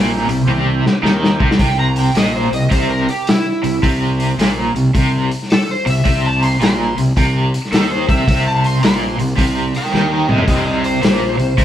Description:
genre	blues rock power trio and southern rock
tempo	108 BPM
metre	4/4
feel	swing 66% on 8ths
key	unclear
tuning	A4 = 440 Hz
part	overdriven tonewheel organ	sustained chords	0.0-1.6 s	C4 to G4	-28 LUFS	right 4 dB	chorus vibrato, slow rotary speaker
part	cranked stack guitar	riff	0.0-11.6 s	Bb2 to Eb3	-18 LUFS	equal	overdrive, tremolo
part	fuzz fingered electric bass	bass	0.0-11.6 s	Bb1 to Eb2	-20 LUFS	equal	overdrive
part	vintage drum kit	drums	0.3-11.6 s	hi-hat, kick drum, snare drum, toms	-17 LUFS	equal	none
part	overdriven slide guitar	melody	1.6-11.6 s	E4 to C6	-20 LUFS	equal	none
room	moderate stone room reverb, RT60 1.2 s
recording	band playing live in one room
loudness	-13 LUFS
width	side -11 dB against mid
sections	0.0-1.6 A section; 1.6-11.6 B section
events	drum fill 0.5-1.6, 9.9-10.5; electric slide guitar solo 1.6-11.6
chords	0.0 C; 1.6 N.C.

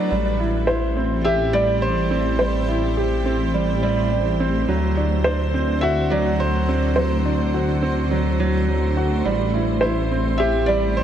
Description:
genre	piano and strings electronica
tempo	105 BPM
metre	4/4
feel	straight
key	A dorian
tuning	A4 = 443 Hz
part	granular cloud pad	sustained chords	0.0-11.0 s	A3 to C5	-28 LUFS	right 2 dB	built-in reverb
part	warm upright piano	riff	0.0-11.0 s	F#3 to C5	-22 LUFS	right 2 dB	tape echo
part	dark detuned saw bass	bass	0.1-11.0 s	A1 to D2	-22 LUFS	equal	none
part	felt-muted upright piano	melody	0.7-11.0 s	C5 to E5	-24 LUFS	left 1 dB	tape echo
room	moderate concert hall reverb, RT60 1.9 s, studio ambience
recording	none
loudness	-18 LUFS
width	side -9 dB against mid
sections	0.1-11.0 A section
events	drop 0.1-11.0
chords	0.1 Am7; 4.7 D7; 9.3 Am7

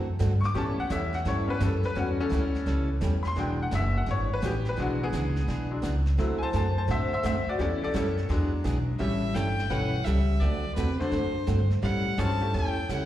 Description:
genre	country, western swing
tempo	170 BPM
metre	4/4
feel	swing 65% on 8ths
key	A mixolydian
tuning	A4 = 441 Hz
part	picked steel-string acoustic guitar	accompaniment	0.0-13.0 s	D3 to A4	-33 LUFS	right 4 dB	slapback echo
part	upright bass	bass	0.0-13.1 s	E1 to A2	-27 LUFS	equal	none
part	jazz brush drum kit	drums	0.2-13.1 s	brushed snare drum, hi-hat, kick drum, snare drum	-41 LUFS	equal	slapback echo
part	bright upright piano	accompaniment	0.4-12.7 s	F#3 to D6	-30 LUFS	left 3 dB	slapback echo
part	clear fiddle	melody	9.0-13.1 s	B4 to A5	-32 LUFS	left 1 dB	slapback echo
part	vintage hollow-body jazz guitar	second line	9.0-13.1 s	C3 to C#4	-32 LUFS	left 1 dB	slapback echo
room	small room ambience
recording	live gig heard through the venue's PA, recital hall reverb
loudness	-25 LUFS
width	side -13 dB against mid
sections	0.0-9.0 A section; 9.0-13.1 B section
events	upright piano solo 0.0-9.0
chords	0.0 D7; 0.6 A7; 3.4 E7; 6.2 D7; 7.6 A7; 8.3 E7; 9.0 A7; 10.4 D7; 11.8 A7

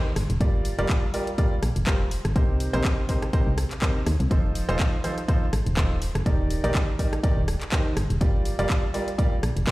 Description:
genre	piano house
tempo	123 BPM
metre	4/4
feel	swing 56% on 16ths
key	G minor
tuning	A4 = 440 Hz
part	clear baby grand piano	riff	0.0-9.7 s	C3 to D5	-29 LUFS	right 1 dB	sidechain pumping, tape echo
part	solid FM bass	bass	0.2-9.7 s	Eb1 to Eb2	-25 LUFS	equal	tube saturation, sidechain pumping
part	house drum kit	drums	0.2-9.7 s	handclaps, hi-hat, rim click	-32 LUFS	equal	overdrive
part	electronic kick drum	drums	0.4-9.7 s	none	-23 LUFS	equal	overdrive
room	little or no reverb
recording	played on a big sound system in a bare room, large studio reverb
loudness	-22 LUFS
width	side -19 dB against mid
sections	0.0-9.7 A section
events	none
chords	0.4 Gm7; 2.4 Cm7; 4.3 F7; 6.3 Ebmaj7; 8.2 Gm7

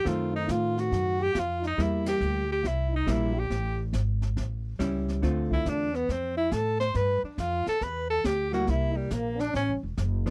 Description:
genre	jazz, small-group swing and bop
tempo	139 BPM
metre	4/4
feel	swing 66% on 8ths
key	C mixolydian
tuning	A4 = 440 Hz
part	clear tenor saxophone	melody	0.0-9.7 s	G3 to C5	-32 LUFS	equal	none
part	growling trombone	second line	0.0-9.8 s	G3 to C5	-36 LUFS	equal	none
part	hollow-body jazz guitar	accompaniment	0.0-5.9, 8.5-10.3 s	D3 to F4	-33 LUFS	equal	none
part	upright bass	bass	0.0-10.3 s	E1 to A2	-32 LUFS	equal	none
part	jazz brush drum kit	drums	0.1-10.3 s	brushed snare drum, hi-hat, kick drum, ride cymbal, snare drum	-37 LUFS	equal	none
room	light reverb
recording	dry, close 1970s-style studio recording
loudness	-28 LUFS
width	mono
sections	0.0-10.3 A section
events	band accent 2.0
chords	0.1 F#dim7; 1.8 C7; 3.5 A7; 5.2 Dm7; 7.0 G5; 8.7 C7; 9.5 A5

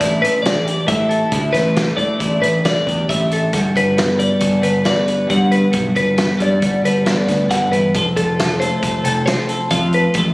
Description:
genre	math rock and midwest emo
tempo	136 BPM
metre	5/4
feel	straight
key	unclear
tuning	A4 = 437 Hz
part	twelve-string electric guitar	accompaniment	0.0-10.3 s	G2 to B4	-19 LUFS	equal	lush chorus
part	twelve-string electric guitar	arpeggios	0.0-10.2 s	A4 to F#5	-18 LUFS	left 1 dB	spring reverb, digital delay
part	growling fingered electric bass	bass	0.0-10.3 s	F1 to A2	-20 LUFS	equal	overdrive
part	loose indie drum kit	drums	0.0-10.3 s	hi-hat, kick drum, snare drum	-22 LUFS	equal	none
room	light reverb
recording	recorded on a phone in the room, studio reverb, compression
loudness	-14 LUFS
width	side -21 dB against mid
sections	0.0-10.3 A section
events	none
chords	0.0 A7sus4; 3.5 Gmaj7; 7.9 F

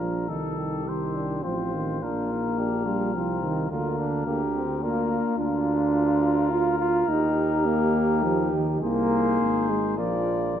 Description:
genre	classical, brass quintet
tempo	106 BPM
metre	3/4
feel	rubato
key	Bb major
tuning	A4 = 439 Hz
part	warm trumpet	melody	0.0-10.6 s	A4 to D5	-32 LUFS	left 8 dB	none
part	mellow flugelhorn	second line	0.0-10.6 s	D4 to Bb4	-32 LUFS	right 6 dB	none
part	mellow trombone	accompaniment	0.0-10.6 s	D3 to F4	-25 LUFS	right 1 dB	none
part	warm French horn	accompaniment	0.0-10.6 s	Bb3 to F4	-33 LUFS	left 5 dB	none
part	warm bass trombone	bass	0.0-10.6 s	Ab1 to Eb2	-29 LUFS	equal	none
room	moderate concert hall reverb, RT60 2.3 s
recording	dark, warm production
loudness	-22 LUFS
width	side -9 dB against mid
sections	0.0-10.6 A section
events	none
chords	0.3 F7/C; 2.0 Bb; 3.7 Bb/D; 7.1 Eb; 8.8 Ab/C; 10.0 Bb

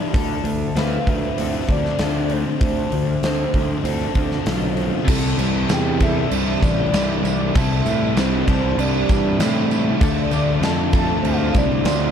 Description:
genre	rock, shoegaze and dream pop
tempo	97 BPM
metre	4/4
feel	straight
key	C major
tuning	A4 = 440 Hz
part	picked twelve-string acoustic guitar	arpeggios	0.0-12.1 s	E4 to C5	-32 LUFS	left 6 dB	wide subtle chorus, analog delay
part	electric guitar through a small old amp	riff	0.0-12.1 s	C3 to F4	-28 LUFS	right 11 dB	reverse reverb
part	thick fuzz guitar	riff	0.0-12.1 s	C3 to F4	-26 LUFS	left 12 dB	distortion, lush chorus
part	fuzz picked electric bass	bass	0.1-12.1 s	A1 to A2	-22 LUFS	equal	overdrive
part	huge arena drum kit	drums	0.1-12.0 s	crash cymbal, hi-hat, kick drum, snare drum	-22 LUFS	equal	none
part	warm velvety synth lead	melody	0.8-12.1 s	C5 to A5	-27 LUFS	equal	chorus, tremolo, analog delay
part	overdriven electric guitar	riff	5.0-12.1 s	C3 to F4	-25 LUFS	right 1 dB	none
part	tambourine	percussion	5.1-12.0 s	none	-38 LUFS	right 12 dB	none
room	studio reverb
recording	dark, warm production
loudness	-17 LUFS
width	side -8 dB against mid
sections	0.0-5.1 A section; 5.1-12.1 B section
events	none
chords	0.1 Dm7; 5.1 Cadd9; 10.0 Dm7

